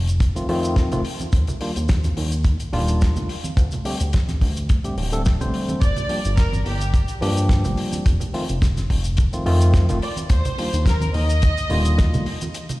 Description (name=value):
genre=nu-disco, nu disco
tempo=107 BPM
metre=4/4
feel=swing 54% on 16ths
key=unclear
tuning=A4 = 439 Hz
part: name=chorused synth bass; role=bass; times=0.0-12.2 s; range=D1 to G2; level=-21 LUFS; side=equal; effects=none
part: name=damped 70s drum kit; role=drums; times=0.1-12.8 s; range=cabasa, hi-hat, snare drum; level=-31 LUFS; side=left 2 dB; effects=small room ambience
part: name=kick drum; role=drums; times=0.2-12.1 s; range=none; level=-18 LUFS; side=equal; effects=small room ambience
part: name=tine electric piano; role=accompaniment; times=0.4-12.3 s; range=D3 to C5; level=-26 LUFS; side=left 1 dB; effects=tape echo
part: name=congas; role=percussion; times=0.5-12.8 s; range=none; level=-30 LUFS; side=right 2 dB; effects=none
part: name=warm studio violin section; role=melody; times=5.8-12.2 s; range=G4 to Eb5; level=-28 LUFS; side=equal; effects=tape echo
room=light reverb, small room ambience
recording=played on a big sound system in a bare room, stone room reverb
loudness=-18 LUFS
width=side -19 dB against mid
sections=0.0-12.8 A section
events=break 12.5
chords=0.0 F7; 1.3 Ebmaj9; 3.3 D7sus4; 5.8 Gm7; 8.1 F7; 10.3 Ebmaj9; 12.3 N.C.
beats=0.21 0.77 | 1.33 1.89 2.45 3.01 | 3.58 4.14 4.70 5.26 | 5.82 6.38 6.94 7.50 | 8.06 8.62 9.18 9.74 | 10.30 10.87 11.43 11.99 | 12.55